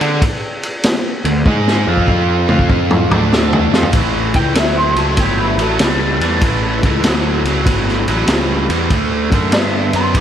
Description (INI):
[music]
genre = blues rock power trio and southern rock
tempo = 97 BPM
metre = 4/4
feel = swing 67% on 8ths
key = unclear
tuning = A4 = 441 Hz
[part]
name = biting overdriven guitar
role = riff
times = 0.0-10.2 s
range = A2 to D5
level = -18 LUFS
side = right 1 dB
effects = slapback echo
[part]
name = fuzz picked electric bass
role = bass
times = 0.0-10.2 s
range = G1 to D3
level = -18 LUFS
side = equal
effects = overdrive
[part]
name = vintage drum kit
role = drums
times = 0.0-10.2 s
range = kick drum, ride cymbal, snare drum, toms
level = -16 LUFS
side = equal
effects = none
[part]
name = lightly driven lead guitar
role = melody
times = 4.4-10.2 s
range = E4 to D6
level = -20 LUFS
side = equal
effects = wah
[sound]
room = moderate lush hall reverb, RT60 2.0 s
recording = big arena sound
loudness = -12 LUFS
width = side -9 dB against mid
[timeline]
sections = 0.0-3.9 A section; 3.9-10.2 B section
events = drum fill 1.5-3.9; lead electric guitar solo 3.9-10.2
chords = 0.0 D5; 1.8 F5; 3.0 D5; 3.9 A; 8.9 D